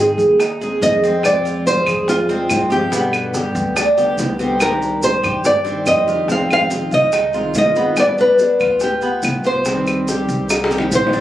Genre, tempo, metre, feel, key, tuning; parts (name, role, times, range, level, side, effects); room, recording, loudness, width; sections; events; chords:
latin, Cuban son and guajira; 143 BPM; 4/4; straight; C minor; A4 = 440 Hz
fingerpicked plugged-in steel-string acoustic guitar; accompaniment; 0.0-11.2 s; B2 to Ab4; -23 LUFS; left 1 dB
Cuban tres; arpeggios; 0.0-11.2 s; B3 to Ab4; -21 LUFS; right 2 dB
upright bass; bass; 0.0-11.2 s; G1 to Ab2; -27 LUFS; right 1 dB
maracas; percussion; 0.2-11.2 s; -29 LUFS; right 1 dB
bongos; percussion; 0.4-11.2 s; -24 LUFS; left 1 dB
claves; percussion; 0.4-10.7 s; -22 LUFS; equal
nylon-string guitar; melody; 0.8-11.2 s; F4 to F5; -16 LUFS; equal; plate reverb
moderate studio ambience, RT60 0.5 s; recorded on a phone in the room, club reverb; -14 LUFS; side -13 dB against mid
0.0-11.2 A section
drum fill 10.5-11.2
0.0 Ab; 1.2 Fm; 2.9 G; 4.6 Cmadd9; 6.3 Fm7; 8.0 G7; 9.7 Cm